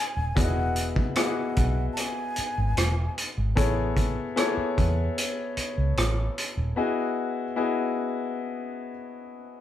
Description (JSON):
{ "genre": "lush 1970s-style soul", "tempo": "75 BPM", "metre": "4/4", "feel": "straight", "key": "E major", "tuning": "A4 = 440 Hz", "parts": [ { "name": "breathy jazz flute", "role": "melody", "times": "0.0-3.2 s", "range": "F#5 to A5", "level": "-33 LUFS", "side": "equal", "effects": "none" }, { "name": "clear baby grand piano", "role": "accompaniment", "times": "0.0-9.6 s", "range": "B3 to D#5", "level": "-29 LUFS", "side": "left 4 dB", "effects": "none" }, { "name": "vintage muted fingered electric bass", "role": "bass", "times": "0.2-6.7 s", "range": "D#1 to E2", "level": "-26 LUFS", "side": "right 1 dB", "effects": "none" }, { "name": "vintage drum kit", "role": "drums", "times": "0.4-6.6 s", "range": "hi-hat, kick drum, rim click", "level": "-28 LUFS", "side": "equal", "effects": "none" }, { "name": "vibraphone with medium mallets", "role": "texture", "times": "4.4-6.4 s", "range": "C#5", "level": "-35 LUFS", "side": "right 2 dB", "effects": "none" } ], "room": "moderate studio reverb, RT60 0.8 s", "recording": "band playing live in one room", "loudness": "-24 LUFS", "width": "side -11 dB against mid", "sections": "0.0-9.6 A section", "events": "break 6.8-9.6", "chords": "0.4 Emaj9; 3.6 Amaj7; 6.8 Emaj9" }